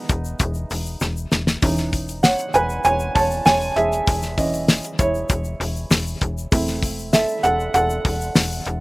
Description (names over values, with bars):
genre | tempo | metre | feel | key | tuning
piano-driven pop | 98 BPM | 4/4 | straight | unclear | A4 = 438 Hz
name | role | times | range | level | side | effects
dark upright piano | accompaniment | 0.0-8.8 s | E3 to A5 | -20 LUFS | right 2 dB | none
slap-like FM bass | bass | 0.1-8.8 s | E1 | -26 LUFS | left 1 dB | none
damped 70s drum kit | drums | 0.1-8.8 s | hi-hat, kick drum, snare drum | -20 LUFS | left 1 dB | none
egg shaker | percussion | 0.1-8.7 s | none | -36 LUFS | left 5 dB | none
room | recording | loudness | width
little or no reverb | recorded outdoors, with no room sound | -18 LUFS | side -22 dB against mid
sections
0.0-8.8 A section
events
upright piano solo 0.0-8.8; drum fill 1.0-1.6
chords
0.0 G#m/E; 1.6 C#madd9/E; 6.5 Am/E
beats
0.40 1.01 | 1.63 2.24 2.85 3.46 | 4.08 4.69 5.30 5.91 | 6.52 7.14 7.75 8.36